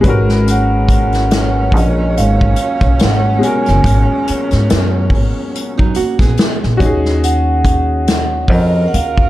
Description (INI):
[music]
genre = R&B, neo-soul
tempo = 71 BPM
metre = 4/4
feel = swing 55% on 16ths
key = unclear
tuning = A4 = 440 Hz
[part]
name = clear upright piano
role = accompaniment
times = 0.0-9.3 s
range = B2 to B4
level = -19 LUFS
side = left 3 dB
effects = none
[part]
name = upright bass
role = bass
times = 0.0-9.3 s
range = F#1 to G#2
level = -14 LUFS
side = equal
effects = none
[part]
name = unplugged drum kit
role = drums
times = 0.0-9.3 s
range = hi-hat, kick drum, snare drum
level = -15 LUFS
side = equal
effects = none
[part]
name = vibraphone with soft mallets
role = melody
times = 0.5-9.3 s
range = D#5 to G#5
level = -19 LUFS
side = right 2 dB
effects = none
[part]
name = warm saxophone section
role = stabs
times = 0.5-9.3 s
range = A#2 to A#4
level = -22 LUFS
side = right 3 dB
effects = none
[part]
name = nylon-string guitar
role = second line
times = 5.8-6.8 s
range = F#3 to G#4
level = -19 LUFS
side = right 6 dB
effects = none
[sound]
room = small room reverb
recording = dark, warm production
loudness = -11 LUFS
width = side -15 dB against mid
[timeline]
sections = 0.0-9.3 A section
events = none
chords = 0.0 G#m11; 6.8 D#m11